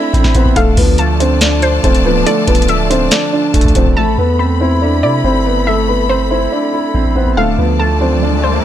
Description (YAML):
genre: hip hop, trap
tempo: 141 BPM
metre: 4/4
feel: half-time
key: A minor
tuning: A4 = 440 Hz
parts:
  - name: dark concert grand piano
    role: melody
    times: 0.0-8.6 s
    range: A3 to D5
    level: -17 LUFS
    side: left 1 dB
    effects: low-pass filter
  - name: warbly dusty pluck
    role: second line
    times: 0.0-8.6 s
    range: C5 to B5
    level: -20 LUFS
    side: left 1 dB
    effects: chorus, ping-pong delay
  - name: dark baby grand piano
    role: accompaniment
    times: 0.0-8.6 s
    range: D3 to E4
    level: -18 LUFS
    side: right 4 dB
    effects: low-pass filter
  - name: warm symphonic string section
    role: sustained chords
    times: 0.0-8.6 s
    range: F4 to B5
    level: -21 LUFS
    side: left 5 dB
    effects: none
  - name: long sustained 808-style bass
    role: bass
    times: 0.1-8.6 s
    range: D1 to C3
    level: -16 LUFS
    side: equal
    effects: none
  - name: booming analog drum machine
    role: drums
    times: 0.1-4.0 s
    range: hi-hat, kick drum, snare drum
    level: -13 LUFS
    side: equal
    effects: none
  - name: riser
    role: sound effects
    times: 8.0-8.6 s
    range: none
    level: -23 LUFS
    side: right 3 dB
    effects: none
room: light reverb, small room ambience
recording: none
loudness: -10 LUFS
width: side -11 dB against mid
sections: 0.0-4.0 A section; 4.0-8.6 B section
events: riser 8.0-8.6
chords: 0.0 Amadd9; 0.6 Dmadd9; 4.0 Amadd9; 7.4 Dm